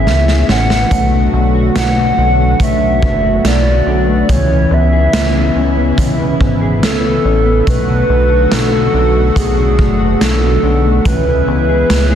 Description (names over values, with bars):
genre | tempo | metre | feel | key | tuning
dream pop | 71 BPM | 4/4 | straight | B dorian | A4 = 438 Hz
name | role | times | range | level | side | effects
warbly nostalgic lead | melody | 0.0-12.2 s | G#4 to F#5 | -16 LUFS | right 1 dB | chorus, digital delay
lush unison pad | sustained chords | 0.0-12.2 s | C#3 to F#4 | -19 LUFS | equal | chorus
mellow electric guitar | arpeggios | 0.0-12.2 s | E3 to G#4 | -19 LUFS | left 3 dB | lush chorus, digital delay
chorused synth bass | bass | 0.0-12.2 s | F#1 to C#2 | -15 LUFS | equal | none
raw garage drum kit | drums | 0.1-12.1 s | hi-hat, kick drum, snare drum | -17 LUFS | equal | none
room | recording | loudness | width
small room ambience | dense, heavily limited modern master | -10 LUFS | side -9 dB against mid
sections
0.0-12.2 A section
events
drum fill 0.1-0.9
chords
0.0 C#m7; 0.9 Bm7; 4.3 C#m7; 7.7 Bm7; 11.1 C#m7